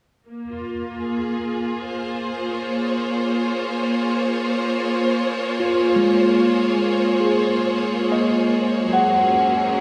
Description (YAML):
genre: ambient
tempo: 56 BPM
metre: 4/4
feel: straight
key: Bb minor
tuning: A4 = 444 Hz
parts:
  - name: bright studio string section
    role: sustained chords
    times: 0.3-9.8 s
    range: Gb3 to Db5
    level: -23 LUFS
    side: equal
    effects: none
  - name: bright tine electric piano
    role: arpeggios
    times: 5.6-9.8 s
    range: Ab3 to Gb5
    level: -22 LUFS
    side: equal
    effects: phaser, analog delay
room: wet plate reverb, RT60 2.9 s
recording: echo-heavy mix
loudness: -21 LUFS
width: mono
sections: 0.3-9.8 A section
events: none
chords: 0.3 Bbm7; 8.8 Gbadd9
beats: | 0.26 1.33 2.40 3.47 | 4.54 5.62 6.69 7.76 | 8.83